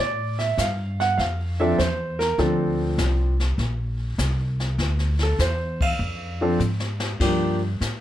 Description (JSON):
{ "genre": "jazz piano trio", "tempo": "100 BPM", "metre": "4/4", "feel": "swing 69% on 8ths", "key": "D minor", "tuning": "A4 = 438 Hz", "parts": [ { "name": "warm grand piano", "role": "melody", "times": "0.0-7.6 s", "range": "F3 to F#5", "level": "-23 LUFS", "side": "right 1 dB", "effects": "none" }, { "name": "upright bass", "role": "bass", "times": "0.0-8.0 s", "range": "Bb1 to A2", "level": "-24 LUFS", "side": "equal", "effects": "none" }, { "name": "jazz brush drum kit", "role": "drums", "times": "0.4-8.0 s", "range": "brushed snare drum, crash cymbal, hi-hat, kick drum, ride cymbal, snare drum", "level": "-29 LUFS", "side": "left 2 dB", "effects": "none" } ], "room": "light reverb", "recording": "none", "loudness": "-21 LUFS", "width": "side -12 dB against mid", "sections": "0.0-8.0 A section", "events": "band accent 5.7-6.0; drum fill 6.6-7.2", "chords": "0.0 Dm7; 7.2 Gm7" }